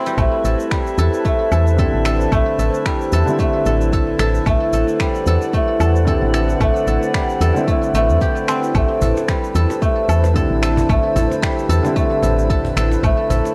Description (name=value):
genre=organic downtempo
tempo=112 BPM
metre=4/4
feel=swing 57% on 16ths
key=A dorian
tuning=A4 = 441 Hz
part: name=warbly tape-like pad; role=sustained chords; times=0.0-13.5 s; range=E4 to B5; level=-26 LUFS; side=equal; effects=chorus, built-in reverb, phaser, sidechain pumping
part: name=guzheng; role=arpeggios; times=0.0-13.5 s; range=G3 to A4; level=-22 LUFS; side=equal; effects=tape echo
part: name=drifting glass-harmonics texture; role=texture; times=0.0-13.5 s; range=E4 to B5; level=-36 LUFS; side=equal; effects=chorus, built-in reverb
part: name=electronic cabasa, woodblock and finger snaps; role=drums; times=0.1-13.5 s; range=none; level=-30 LUFS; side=equal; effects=none
part: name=woody FM bass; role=bass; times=0.2-13.4 s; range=A1 to E2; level=-20 LUFS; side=equal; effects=sidechain pumping
part: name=electronic kick drum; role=drums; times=0.2-13.2 s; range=none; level=-22 LUFS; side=equal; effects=none
part: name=felt-muted upright piano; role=accompaniment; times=1.8-13.5 s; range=D3 to E4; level=-27 LUFS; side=equal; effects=sidechain pumping, tape echo
part: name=cajon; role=percussion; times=9.0-13.5 s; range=none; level=-28 LUFS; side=equal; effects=none
room=light reverb, studio reverb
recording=dry, gritty hardware recording, cassette tape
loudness=-17 LUFS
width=mono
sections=0.0-13.5 A section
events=none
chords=0.0 Amadd9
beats=| 0.18 0.71 1.25 1.78 | 2.32 2.86 3.39 3.93 | 4.46 5.00 5.54 6.07 | 6.61 7.14 7.68 8.21 | 8.75 9.29 9.82 10.36 | 10.89 11.43 11.96 12.50 | 13.04